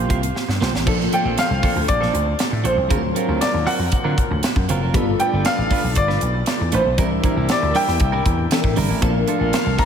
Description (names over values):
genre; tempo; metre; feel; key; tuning
polished 1980s jazz-funk pop; 118 BPM; 4/4; straight; unclear; A4 = 440 Hz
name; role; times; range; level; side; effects
clear baby grand piano; melody; 0.0-9.9 s; C5 to Bb5; -23 LUFS; equal; slapback echo, ping-pong delay
bell-like FM electric piano; accompaniment; 0.0-9.9 s; E3 to A#4; -26 LUFS; left 3 dB; ensemble chorus, slapback echo
clean electric guitar; riff; 0.0-9.9 s; F3 to C5; -26 LUFS; right 6 dB; wide subtle chorus
vintage slap bass; bass; 0.0-9.8 s; E#1 to D3; -22 LUFS; equal; none
crisp fusion drum kit; drums; 0.1-9.9 s; crash cymbal, hi-hat, kick drum, snare drum; -22 LUFS; equal; none
warm horn section; second line; 0.9-9.9 s; E#3 to F5; -30 LUFS; left 4 dB; slapback echo, ping-pong delay
room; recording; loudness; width
moderate lush hall reverb, RT60 2.8 s; big arena sound; -17 LUFS; side -8 dB against mid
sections
0.9-9.9 A section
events
drum fill 0.4-0.9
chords
0.0 C7sus4; 0.9 Bbmaj7; 2.9 D7alt; 4.9 G9; 7.0 C9; 9.0 Bbmaj7